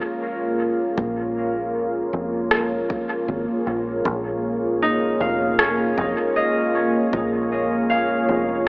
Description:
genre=ambient dub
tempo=78 BPM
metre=4/4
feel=straight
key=Bb minor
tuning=A4 = 439 Hz
part: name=deep dark ambient pad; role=sustained chords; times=0.0-8.7 s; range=Bb3 to Db5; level=-21 LUFS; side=equal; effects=chorus, built-in reverb
part: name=concert harp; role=arpeggios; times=0.0-8.7 s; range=Db4 to F5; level=-24 LUFS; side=equal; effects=low-pass filter, dub echo
part: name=deep dub fingered electric bass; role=bass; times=1.0-8.7 s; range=F1 to Bb1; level=-30 LUFS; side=equal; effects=none
part: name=electronic kick drum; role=drums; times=1.0-7.3 s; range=none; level=-28 LUFS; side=equal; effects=none
part: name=electronic rim click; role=drums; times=2.5-5.7 s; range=none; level=-22 LUFS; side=equal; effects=dub echo
room=moderate huge ambient reverb, RT60 6.3 s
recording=AM radio sound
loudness=-19 LUFS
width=side -30 dB against mid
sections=0.0-8.7 A section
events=filter sweep on harp 0.0-8.7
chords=0.0 Bbm7

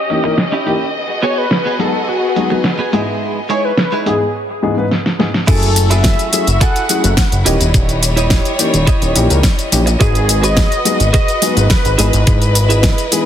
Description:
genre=nu-disco, nu disco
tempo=106 BPM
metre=4/4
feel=straight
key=F# dorian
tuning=A4 = 440 Hz
part: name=wide unison lead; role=melody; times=0.0-12.1 s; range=F#4 to F#5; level=-20 LUFS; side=equal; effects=tape echo
part: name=dark studio violin section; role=sustained chords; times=0.0-13.3 s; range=G3 to D#5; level=-22 LUFS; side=left 2 dB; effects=sidechain pumping
part: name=dark grand piano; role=accompaniment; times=0.1-13.2 s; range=G#2 to G#5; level=-18 LUFS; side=left 2 dB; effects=sidechain pumping, analog delay
part: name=pop drum kit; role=drums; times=0.1-13.2 s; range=crash cymbal, hi-hat, shaker, snare drum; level=-17 LUFS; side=equal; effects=low-pass filter on hats, small room ambience, low-pass filter on snare, low-pass filter on cymbals, low-pass filter on perc
part: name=direct-recorded clean electric guitar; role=riff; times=0.2-13.1 s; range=G#3 to D#5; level=-22 LUFS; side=right 4 dB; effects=lush chorus, low-pass filter
part: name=fat analog bass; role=bass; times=5.5-12.9 s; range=D#1 to C#2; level=-14 LUFS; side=equal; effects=sidechain pumping
part: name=electronic kick drum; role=drums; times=5.5-13.0 s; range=none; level=-14 LUFS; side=equal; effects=small room ambience
room=light reverb, digital ambience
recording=dense, heavily limited modern master, low-pass filter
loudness=-11 LUFS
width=side -10 dB against mid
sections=0.0-5.5 A section; 5.5-13.3 B section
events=filter sweep on grand piano 0.0-5.5; filter sweep on violin section 0.0-5.5; drum fill 4.9-5.5; drop 5.5-13.3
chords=0.0 D#7b9; 1.0 G#m7; 2.9 Emaj7/G#; 5.5 F#m9; 7.5 D#7b9; 10.0 G#m7; 12.0 Emaj7/G#

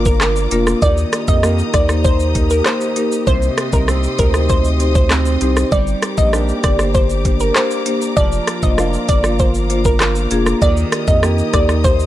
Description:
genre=dancehall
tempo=98 BPM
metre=4/4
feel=straight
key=C minor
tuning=A4 = 441 Hz
part: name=marimba with medium mallets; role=accompaniment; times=0.0-11.8 s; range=Bb3 to Eb5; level=-21 LUFS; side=left 2 dB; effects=sidechain pumping
part: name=dark studio string section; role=sustained chords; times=0.0-12.1 s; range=F4 to Eb6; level=-27 LUFS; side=left 2 dB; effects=sidechain pumping
part: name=flamenco guitar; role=arpeggios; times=0.0-12.1 s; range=C3 to G4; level=-24 LUFS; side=right 5 dB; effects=none
part: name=saturated sub bass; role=bass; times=0.0-12.1 s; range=F1 to F2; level=-18 LUFS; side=equal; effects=none
part: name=glassy wavetable pluck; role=melody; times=0.1-12.0 s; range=Bb4 to Eb5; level=-20 LUFS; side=equal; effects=chorus, analog delay
part: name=island pop drum kit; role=drums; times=0.1-12.1 s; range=handclaps, hi-hat, kick drum, rim click, shaker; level=-17 LUFS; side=equal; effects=none
room=little or no reverb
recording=dry, gritty hardware recording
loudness=-13 LUFS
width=side -13 dB against mid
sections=0.0-12.1 A section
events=none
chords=0.0 Bb; 0.8 Eb; 3.3 Cm; 5.7 Gm; 8.2 Bb/F; 10.6 Eb

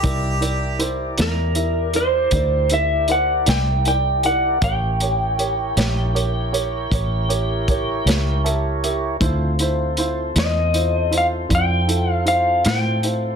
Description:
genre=slow blues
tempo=52 BPM (dotted quarters)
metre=12/8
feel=straight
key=C mixolydian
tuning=A4 = 441 Hz
part: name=warm harmonica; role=second line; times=0.0-1.0 s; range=G4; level=-26 LUFS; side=right 1 dB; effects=plate reverb
part: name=dark upright piano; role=accompaniment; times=0.0-13.3 s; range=E4 to A5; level=-26 LUFS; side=right 4 dB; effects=plate reverb
part: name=tonewheel organ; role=sustained chords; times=0.0-13.4 s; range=C4 to D5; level=-28 LUFS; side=equal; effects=slow rotary speaker, plate reverb
part: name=vintage muted fingered electric bass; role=bass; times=0.0-13.4 s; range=A1 to A2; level=-22 LUFS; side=equal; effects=none
part: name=crunchy breakbeat drum kit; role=drums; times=0.0-13.2 s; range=hi-hat, kick drum, snare drum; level=-23 LUFS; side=equal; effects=none
part: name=electric slide guitar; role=melody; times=1.2-13.0 s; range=Bb4 to G5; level=-21 LUFS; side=equal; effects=plate reverb
room=moderate studio reverb, RT60 0.5 s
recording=dense, heavily limited modern master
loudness=-17 LUFS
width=side -7 dB against mid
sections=0.0-13.4 A section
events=upright piano fill 8.1-9.2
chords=0.1 C9; 4.6 A7b9; 9.2 Dm7

